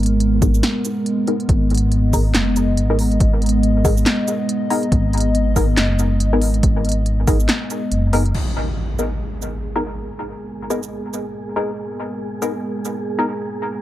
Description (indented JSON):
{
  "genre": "deep dubstep",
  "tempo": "140 BPM",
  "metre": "4/4",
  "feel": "swing 58% on 16ths, half-time",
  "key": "G# minor",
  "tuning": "A4 = 440 Hz",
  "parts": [
    { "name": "dark analog pad", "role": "sustained chords", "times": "0.0-13.8 s", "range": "G#3 to D#5", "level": "-22 LUFS", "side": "equal", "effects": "chorus" },
    { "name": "dark detuned saw bass", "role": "bass", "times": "0.0-8.3 s", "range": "F#1 to G#1", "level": "-18 LUFS", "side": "equal", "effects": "none" },
    { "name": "deep house drum kit", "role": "drums", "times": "0.0-12.9 s", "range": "crash cymbal, handclaps, hi-hat, shaker, snare drum", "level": "-23 LUFS", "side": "equal", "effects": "none" },
    { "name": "filtered dub chord stab", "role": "stabs", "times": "0.4-13.3 s", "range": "B3 to A#4", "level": "-24 LUFS", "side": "left 2 dB", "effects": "wide subtle chorus, dub echo" },
    { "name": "electronic kick drum", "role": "drums", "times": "0.4-7.4 s", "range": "none", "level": "-18 LUFS", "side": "equal", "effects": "none" },
    { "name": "impact", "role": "sound effects", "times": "8.3-10.1 s", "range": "none", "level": "-26 LUFS", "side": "equal", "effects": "none" },
    { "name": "wind-like tuned noise texture", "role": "texture", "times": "8.9-13.8 s", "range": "G#4", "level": "-32 LUFS", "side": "right 4 dB", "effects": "built-in reverb" }
  ],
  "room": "light reverb",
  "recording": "dark, warm production",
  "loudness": "-16 LUFS",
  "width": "side -14 dB against mid",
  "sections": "0.0-8.3 A section; 8.3-13.8 B section",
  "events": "filter sweep on synth stab 0.0-8.3; impact 8.3-10.1",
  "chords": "0.0 G#madd9",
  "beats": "0.20 0.63 1.06 | 1.49 1.92 2.35 2.78 | 3.21 3.63 4.06 4.49 | 4.92 5.35 5.78 6.21 | 6.63 7.06 7.49 7.92 | 8.35 8.78 9.21 9.63 | 10.06 10.49 10.92 11.35 | 11.78 12.21 12.63 13.06 | 13.49"
}